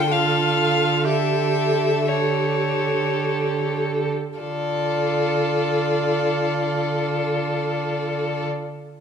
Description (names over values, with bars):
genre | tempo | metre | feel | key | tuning
classical, slow romantic movement for string quartet | 47-66 BPM | 3/4 | rubato | D minor | A4 = 440 Hz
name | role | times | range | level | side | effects
rich violin | melody | 0.0-8.4 s | C#5 to G5 | -25 LUFS | left 7 dB | none
rich violin | second line | 0.0-8.4 s | A4 | -25 LUFS | left 1 dB | none
rich viola | accompaniment | 0.0-8.4 s | F4 to G4 | -26 LUFS | right 3 dB | none
warm cello | bass | 0.0-8.4 s | D3 | -26 LUFS | right 6 dB | none
room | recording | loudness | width
wet recital hall reverb, RT60 1.4 s | minimal, uncompressed stereo recording | -19 LUFS | side -7 dB against mid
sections
0.0-4.4 A section; 4.4-7.7 B section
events
slowing down 0.0-4.4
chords
0.0 Dm; 1.1 A7/D; 4.4 Dm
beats
0.12 | 1.06 2.08 3.18 | 4.39 5.50 6.59